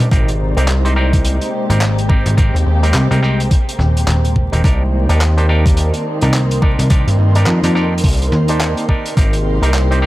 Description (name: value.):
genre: glitch hop.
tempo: 106 BPM.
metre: 4/4.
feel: swing 60% on 16ths.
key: unclear.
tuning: A4 = 440 Hz.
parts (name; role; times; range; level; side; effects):
overdriven clav; stabs; 0.0-10.1 s; C4 to C5; -23 LUFS; right 1 dB; auto-wah, sidechain pumping, dub echo.
crunchy breakbeat drum kit; drums; 0.0-10.0 s; handclaps, hi-hat, rim click, toms; -22 LUFS; equal; none.
ethereal airy pad; texture; 0.0-10.1 s; Ab3 to C6; -24 LUFS; equal; ensemble chorus, built-in reverb, sidechain pumping.
muted chamber string section; sustained chords; 0.1-10.1 s; C3 to G4; -25 LUFS; equal; sidechain pumping.
gritty driven synth bass; bass; 0.1-10.1 s; Ab1 to G2; -14 LUFS; equal; tube saturation.
electronic kick drum; drums; 0.1-9.3 s; none; -13 LUFS; equal; overdrive.
slap-like FM bass; bass; 1.7-8.7 s; Eb1 to F2; -14 LUFS; equal; tube saturation.
room: small room ambience.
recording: vinyl crackle.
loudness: -12 LUFS.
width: side -17 dB against mid.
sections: 0.0-10.1 A section.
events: none.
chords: 0.1 Abmaj9; 4.6 Cm9; 9.2 Abmaj9.